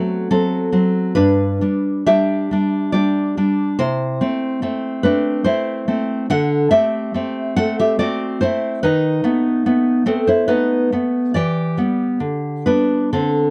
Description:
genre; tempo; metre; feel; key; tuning
romantic piece for solo classical guitar; 71 BPM; 3/4; uneven beats, rubato; G major; A4 = 440 Hz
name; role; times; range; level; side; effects
nylon-string guitar; solo; 0.0-13.5 s; G2 to F#5; -18 LUFS; equal; none
room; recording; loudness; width
light reverb; dry, close 1970s-style studio recording; -18 LUFS; mono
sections
0.0-13.5 A section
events
none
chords
0.0 F#dim; 1.2 G; 3.8 Am/C; 6.3 D7; 8.8 B7/D#; 11.4 Em7; 12.2 G/D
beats
0.32 | 1.17 2.10 2.95 | 3.80 4.64 5.46 | 6.29 7.15 7.99 | 8.82 9.65 10.49 | 11.35 12.22 13.14

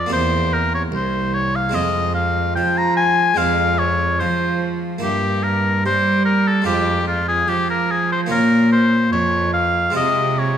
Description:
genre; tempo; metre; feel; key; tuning
classical, baroque-style sonata movement with continuo; 73 BPM; 4/4; straight; F minor from 3.4 s; A4 = 440 Hz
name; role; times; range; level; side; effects
clear oboe; melody; 0.0-10.6 s; F4 to Bb5; -18 LUFS; left 2 dB; none
harpsichord; accompaniment; 0.0-10.6 s; C2 to G4; -25 LUFS; right 2 dB; none
dark cello; bass; 0.0-10.6 s; C2 to G3; -20 LUFS; right 2 dB; none
room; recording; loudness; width
wet scoring stage reverb, RT60 2.1 s; minimal, uncompressed stereo recording; -16 LUFS; side -9 dB against mid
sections
0.0-10.6 A section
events
none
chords
0.1 C7/E; 1.7 Fm; 5.0 Edim/G; 6.7 Fm; 8.3 Bbm; 10.0 Fm/C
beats
| 0.12 0.93 1.75 2.57 | 3.39 4.20 5.03 5.85 | 6.67 7.49 8.31 9.13 | 9.95

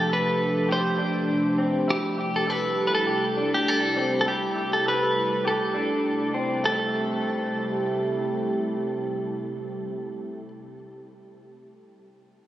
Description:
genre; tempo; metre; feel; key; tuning
dream pop; 101 BPM; 4/4; straight; A minor; A4 = 437 Hz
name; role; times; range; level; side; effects
clean electric guitar; melody; 0.0-10.5 s; G4 to C5; -26 LUFS; equal; spring reverb, ping-pong delay
warbly tape-like pad; sustained chords; 0.0-9.8 s; C3 to G4; -28 LUFS; right 1 dB; chorus, built-in reverb
electric guitar through a small old amp; arpeggios; 0.0-10.5 s; A3 to A4; -29 LUFS; left 1 dB; wide subtle chorus, ping-pong delay
room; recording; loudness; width
wet huge ambient reverb, RT60 6.8 s; recorded on a phone in the room, studio reverb; -22 LUFS; side -13 dB against mid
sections
0.0-6.6 A section; 6.6-9.0 B section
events
none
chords
0.0 G9sus4; 1.9 Am7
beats
0.10 0.69 1.29 | 1.88 2.48 3.07 3.66 | 4.26 4.85 5.45 6.04 | 6.63 7.23 7.82 8.42

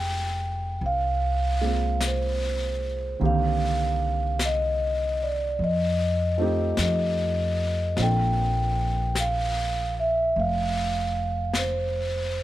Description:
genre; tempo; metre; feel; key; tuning
jazz ballad; 50 BPM; 4/4; swing 66% on 8ths; unclear; A4 = 440 Hz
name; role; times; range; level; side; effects
vibraphone with soft mallets; melody; 0.0-12.4 s; C5 to G5; -26 LUFS; right 1 dB; none
warm grand piano; accompaniment; 0.0-12.4 s; D3 to A4; -31 LUFS; right 3 dB; none
upright bass; bass; 0.0-12.4 s; F1 to F2; -27 LUFS; equal; none
vintage brush drum kit; drums; 0.8-12.4 s; brushed snare drum, hi-hat, snare drum; -34 LUFS; left 3 dB; none
room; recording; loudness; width
little or no reverb; none; -23 LUFS; side -14 dB against mid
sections
0.0-12.4 A section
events
none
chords
0.0 Fm9; 3.2 Cm9; 5.6 F9; 8.0 Bbmaj9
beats
0.81 2.01 | 3.21 4.40 5.59 6.78 | 7.97 9.16 10.35 11.54

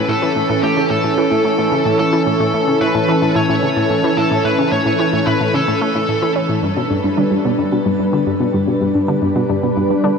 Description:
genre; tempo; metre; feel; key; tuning
ambient, sequencer-driven space music; 110 BPM; 4/4; straight; unclear; A4 = 440 Hz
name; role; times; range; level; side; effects
high-gain lead guitar; melody; 0.0-6.3 s; G4 to C#5; -20 LUFS; equal; distortion, shimmer reverb, ping-pong delay
lush unison pad; sustained chords; 0.0-10.2 s; E3 to B4; -17 LUFS; equal; chorus, shimmer reverb
analog pluck; riff; 0.1-10.1 s; G2 to C#4; -20 LUFS; left 1 dB; chorus, shimmer reverb, ping-pong delay
soft round pluck; arpeggios; 6.6-10.1 s; G3 to D4; -21 LUFS; equal; chorus, auto-pan, shimmer reverb, ping-pong delay
room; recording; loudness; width
wet huge ambient reverb, RT60 7.9 s; none; -14 LUFS; side -5 dB against mid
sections
0.0-10.2 A section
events
none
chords
0.0 A; 6.6 G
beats
| 0.09 0.63 1.18 1.72 | 2.27 2.81 3.36 3.90 | 4.45 4.99 5.54 6.08 | 6.63 7.17 7.72 8.27 | 8.81 9.36 9.90

